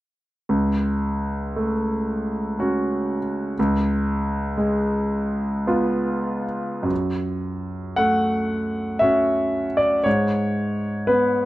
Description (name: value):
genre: classical, romantic nocturne for solo piano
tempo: 46-61 BPM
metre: 3/4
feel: rubato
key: F# minor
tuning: A4 = 440 Hz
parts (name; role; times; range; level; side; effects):
- bright concert grand piano; solo; 0.5-11.5 s; C#2 to F#5; -20 LUFS; equal; none
room: light reverb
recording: dark, warm production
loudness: -20 LUFS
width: side -16 dB against mid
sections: 0.5-6.9 A section; 6.9-11.5 B section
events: none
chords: 0.5 F#m/C#; 3.6 C#7; 6.9 F#m; 10.1 C#7(no3)/G#